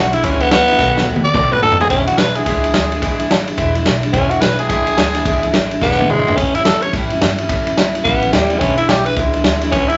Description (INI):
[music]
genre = rockabilly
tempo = 215 BPM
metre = 4/4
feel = swing 61% on 8ths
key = E mixolydian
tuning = A4 = 440 Hz
[part]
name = growling tenor saxophone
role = melody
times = 0.0-10.0 s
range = G3 to D5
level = -18 LUFS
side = equal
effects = none
[part]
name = picked steel-string acoustic guitar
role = accompaniment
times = 0.0-10.0 s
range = E2 to F#4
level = -22 LUFS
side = equal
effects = none
[part]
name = upright bass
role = bass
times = 0.0-10.0 s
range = E1 to G2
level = -26 LUFS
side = equal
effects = none
[part]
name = vintage drum kit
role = drums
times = 0.1-9.9 s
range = kick drum, ride cymbal, snare drum, toms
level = -19 LUFS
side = equal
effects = none
[sound]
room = moderate large studio reverb, RT60 1.1 s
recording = nothing above 7.7 kHz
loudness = -15 LUFS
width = mono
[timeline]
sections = 0.0-1.9 A section; 1.9-10.0 B section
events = tenor saxophone solo 0.0-1.9; drum fill 0.8-1.9, 5.8-6.4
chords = 0.0 E7; 0.8 B7; 1.9 E7; 6.4 A7; 8.6 E7